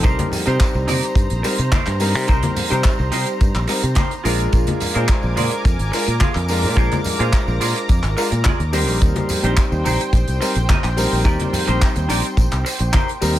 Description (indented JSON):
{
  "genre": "nu-disco, nu disco",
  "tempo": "107 BPM",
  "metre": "4/4",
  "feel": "straight",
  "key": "unclear",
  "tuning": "A4 = 438 Hz",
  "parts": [
    { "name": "clear concert grand piano", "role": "accompaniment", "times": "0.0-13.3 s", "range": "G3 to C5", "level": "-24 LUFS", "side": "left 1 dB", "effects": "sidechain pumping, dub echo" },
    { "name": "lush unison pad", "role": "sustained chords", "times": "0.0-13.4 s", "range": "Bb4 to D6", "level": "-28 LUFS", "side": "right 1 dB", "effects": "chorus, sidechain pumping" },
    { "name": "semi-hollow electric guitar", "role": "riff", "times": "0.0-13.3 s", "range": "Eb4 to F5", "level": "-26 LUFS", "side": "right 2 dB", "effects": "lush chorus, dub echo" },
    { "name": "fingered electric bass", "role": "bass", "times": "0.0-13.4 s", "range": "Ab1 to C3", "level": "-20 LUFS", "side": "equal", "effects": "none" },
    { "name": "damped 70s drum kit", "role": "drums", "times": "0.0-13.4 s", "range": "handclaps, hi-hat", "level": "-26 LUFS", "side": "right 2 dB", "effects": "small room ambience" },
    { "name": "kick drum", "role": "drums", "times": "0.0-13.1 s", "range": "none", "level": "-17 LUFS", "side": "equal", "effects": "small room ambience" },
    { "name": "tambourine and congas", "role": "percussion", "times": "0.0-13.4 s", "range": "none", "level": "-28 LUFS", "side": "left 2 dB", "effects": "none" }
  ],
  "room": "small room reverb",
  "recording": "none",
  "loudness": "-16 LUFS",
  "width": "side -13 dB against mid",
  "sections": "0.0-13.4 A section",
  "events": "none",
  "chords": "0.0 Cm7; 4.2 Bb7; 8.7 Eb6",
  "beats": "| 0.04 0.60 1.16 1.73 | 2.29 2.85 3.41 3.97 | 4.53 5.09 5.65 6.21 | 6.77 7.33 7.89 8.45 | 9.02 9.58 10.14 10.70 | 11.26 11.82 12.38 12.94"
}